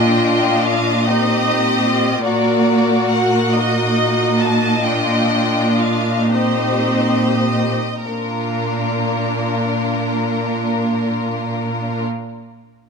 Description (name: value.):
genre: classical, slow romantic movement for symphony orchestra.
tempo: 33-50 BPM (dotted quarters).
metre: 6/8.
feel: rubato.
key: Bb major.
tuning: A4 = 436 Hz.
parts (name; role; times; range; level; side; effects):
clear studio violin section; melody; 0.0-12.0 s; Bb4 to A5; -23 LUFS; left 2 dB; none.
rich studio violin section; second line; 0.0-12.0 s; Eb4 to Eb5; -21 LUFS; left 3 dB; none.
rich studio viola section; accompaniment; 0.0-12.0 s; Bb3 to Gb4; -21 LUFS; equal; none.
clear studio cello section; bass; 0.0-12.0 s; Bb2; -20 LUFS; right 2 dB; none.
room: light reverb.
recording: close, detailed microphones.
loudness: -15 LUFS.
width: side -5 dB against mid.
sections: 0.0-8.0 A section; 8.0-11.3 B section.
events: slowing down 1.1-8.0.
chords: 0.0 F5/Bb; 2.3 Ebm/Bb; 4.8 F5/Bb; 8.0 Bb.